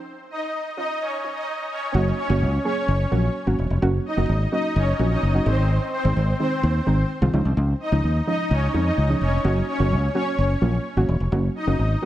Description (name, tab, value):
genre	dance-pop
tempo	128 BPM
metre	4/4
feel	straight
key	F# major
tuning	A4 = 442 Hz
part	soft round pluck	accompaniment	0.0-12.1 s	D#3 to G#4	-26 LUFS	right 2 dB	chorus
part	supersaw pad	melody	0.3-12.1 s	B#3 to D#5	-26 LUFS	equal	digital delay
part	fingered electric bass	bass	1.9-11.9 s	E1 to E#2	-20 LUFS	equal	none
room	little or no reverb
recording	high-pass filter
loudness	-20 LUFS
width	side -13 dB against mid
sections	0.0-1.9 A section; 1.9-12.1 B section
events	build-up 0.0-1.9; drop 1.9-12.1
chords	0.0 C#add9; 1.9 F#; 5.5 G#; 7.3 C#add9; 9.4 F#